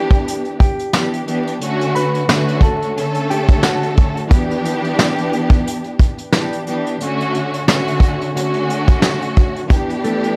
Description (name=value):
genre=hip hop, boom-bap hip-hop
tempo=89 BPM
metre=4/4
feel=swing 55% on 16ths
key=E dorian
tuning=A4 = 440 Hz
part: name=mellow electric guitar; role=melody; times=0.0-3.9, 10.0-10.4 s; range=A3 to B5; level=-25 LUFS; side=equal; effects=tape echo
part: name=warm studio string section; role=accompaniment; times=0.0-10.4 s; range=D3 to A4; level=-21 LUFS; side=equal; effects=cassette tape
part: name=vintage brush drum kit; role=drums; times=0.1-10.4 s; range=hi-hat, kick drum, snare drum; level=-16 LUFS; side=equal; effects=none
room=light reverb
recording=vinyl crackle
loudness=-17 LUFS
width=mono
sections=0.0-9.7 A section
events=none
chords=0.0 Em7; 1.6 Dmaj7; 4.3 Em7; 7.0 Dmaj7; 9.7 Em7